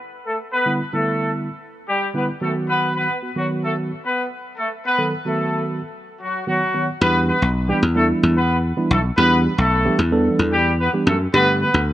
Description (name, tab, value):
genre	dance-pop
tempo	111 BPM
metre	4/4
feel	straight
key	E minor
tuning	A4 = 443 Hz
part	clear horn section	melody	0.3-11.8 s	F#3 to B4	-21 LUFS	equal	low-pass filter, tape echo
part	mellow tine electric piano	accompaniment	0.7-11.7 s	D3 to A4	-22 LUFS	right 2 dB	low-pass filter
part	dry thumbed slap bass	bass	7.0-11.9 s	B1 to G2	-18 LUFS	left 1 dB	none
room	light reverb, studio ambience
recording	none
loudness	-17 LUFS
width	side -14 dB against mid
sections	0.0-7.0 A section; 7.0-11.9 B section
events	drop 7.0-11.9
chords	0.0 Em7; 2.4 B; 7.0 Em7; 11.3 Gadd9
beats	| 0.53 1.07 1.61 2.15 | 2.69 3.23 3.77 4.31 | 4.85 5.39 5.93 6.47 | 7.01 7.55 8.09 8.63 | 9.18 9.72 10.26 10.80 | 11.34 11.88